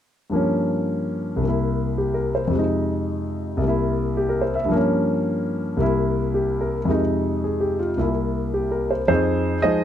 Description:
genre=solo jazz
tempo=110 BPM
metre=4/4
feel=swing 69% on 8ths, rubato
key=unclear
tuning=A4 = 441 Hz
part: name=warm concert grand piano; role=solo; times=0.3-9.8 s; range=C2 to E5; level=-20 LUFS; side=equal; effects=none
room=light reverb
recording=close, detailed microphones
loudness=-20 LUFS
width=side -10 dB against mid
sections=0.3-9.1 A section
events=none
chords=0.3 Gm7b5; 1.4 C7; 2.5 Fm7; 3.6 C7; 4.7 Gm7b5; 5.8 C7; 6.9 Fm7; 8.0 C7; 9.1 Fm7

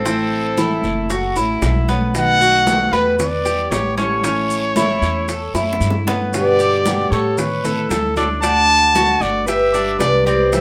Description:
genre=latin, Cuban son and guajira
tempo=114 BPM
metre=4/4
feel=straight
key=unclear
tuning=A4 = 441 Hz
part: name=warm trumpet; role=melody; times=0.0-10.6 s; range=A4 to A5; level=-21 LUFS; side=equal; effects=none
part: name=nylon-string guitar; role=second line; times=0.0-10.6 s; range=E4 to F#5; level=-25 LUFS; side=equal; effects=none
part: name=picked steel-string acoustic guitar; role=accompaniment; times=0.0-10.6 s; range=B2 to G4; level=-25 LUFS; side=equal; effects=none
part: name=Cuban tres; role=arpeggios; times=0.0-10.6 s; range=B3 to C#5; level=-24 LUFS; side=equal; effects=none
part: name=upright bass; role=bass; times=0.0-10.6 s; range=F#1 to A2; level=-26 LUFS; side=equal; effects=none
part: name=bongos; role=percussion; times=0.1-10.6 s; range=none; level=-29 LUFS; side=equal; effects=none
part: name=congas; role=percussion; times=0.1-10.6 s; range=none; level=-30 LUFS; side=equal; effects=none
part: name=guiro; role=percussion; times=0.1-10.6 s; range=none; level=-38 LUFS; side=equal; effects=none
part: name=maracas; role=percussion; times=0.1-10.6 s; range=none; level=-34 LUFS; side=equal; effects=none
room=light reverb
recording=none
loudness=-17 LUFS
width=mono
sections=0.0-10.6 A section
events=drum fill 5.6-6.3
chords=0.1 Am; 1.1 F#m7; 2.1 B7; 3.2 Em; 4.2 A; 6.3 G; 7.4 A; 8.4 D; 9.5 G

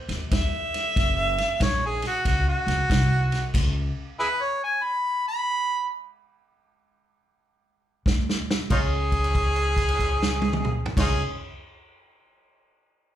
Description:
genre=electric blues shuffle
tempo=93 BPM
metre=4/4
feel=swing 64% on 8ths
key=unclear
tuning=A4 = 440 Hz
part: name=clear upright piano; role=second line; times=0.0-0.1, 8.7-11.2 s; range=Db5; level=-37 LUFS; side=right 5 dB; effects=plate reverb, slapback echo
part: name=upright bass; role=bass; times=0.1-3.9, 8.1-11.2 s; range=Gb1 to Eb2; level=-26 LUFS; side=equal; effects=none
part: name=vintage drum kit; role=drums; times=0.1-3.7, 8.1-11.1 s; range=crash cymbal, kick drum, ride cymbal, snare drum, toms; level=-26 LUFS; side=equal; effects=none
part: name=warm harmonica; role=melody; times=0.3-11.2 s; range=Eb4 to Cb6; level=-25 LUFS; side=right 1 dB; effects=overdrive, plate reverb, slapback echo
room=light reverb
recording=live gig heard through the venue's PA, club reverb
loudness=-22 LUFS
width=side -11 dB against mid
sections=0.0-8.7 A section; 8.7-11.3 B section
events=stop 3.5-8.1; drum fill 8.1-8.7; held note 8.7-10.9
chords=0.0 N.C.; 1.0 Gb7; 3.5 Abmadd11/Db (rootless); 8.1 N.C.; 8.7 Db5

